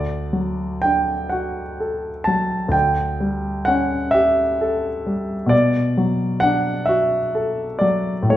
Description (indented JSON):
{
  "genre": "classical, romantic nocturne for solo piano",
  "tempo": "43 BPM (dotted quarters)",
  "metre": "6/8",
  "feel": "rubato",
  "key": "unclear",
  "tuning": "A4 = 440 Hz",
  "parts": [
    { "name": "warm concert grand piano", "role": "solo", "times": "0.0-8.4 s", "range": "D2 to A5", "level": "-18 LUFS", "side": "equal", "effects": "none" }
  ],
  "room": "moderate recital hall reverb, RT60 1.2 s",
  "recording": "recorded in a church or concert hall",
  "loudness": "-18 LUFS",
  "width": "side -13 dB against mid",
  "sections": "0.0-8.4 A section",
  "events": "none",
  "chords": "0.0 D; 2.7 A7/D; 5.5 Bm7"
}